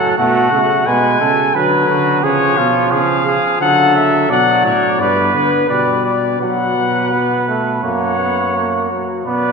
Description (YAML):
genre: classical, imitative canzona for brass ensemble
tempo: 86 BPM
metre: 4/4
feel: straight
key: unclear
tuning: A4 = 436 Hz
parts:
  - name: warm trumpet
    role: melody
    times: 0.0-9.5 s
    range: B4 to G#5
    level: -17 LUFS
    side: left 6 dB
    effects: none
  - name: clear flugelhorn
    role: second line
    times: 0.0-9.5 s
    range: E#4 to D5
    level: -18 LUFS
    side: right 5 dB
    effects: none
  - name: bright trombone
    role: accompaniment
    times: 0.0-9.5 s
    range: E#3 to B3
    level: -20 LUFS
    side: right 2 dB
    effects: none
  - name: dark bass trombone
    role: bass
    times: 0.0-9.5 s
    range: F#2 to D3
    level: -20 LUFS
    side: right 1 dB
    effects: none
room: wet church reverb, RT60 3.6 s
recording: minimal, uncompressed stereo recording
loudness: -12 LUFS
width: side -5 dB against mid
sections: 0.0-9.3 A section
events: none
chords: 0.0 F#m; 0.9 G#dim/B; 2.2 C#; 3.6 D; 5.0 G; 6.4 F#sus4/B; 7.8 F#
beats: 0.18 | 0.87 1.56 2.24 2.93 | 3.61 4.30 5.00 5.70 | 6.41 7.12 7.84 8.55 | 9.26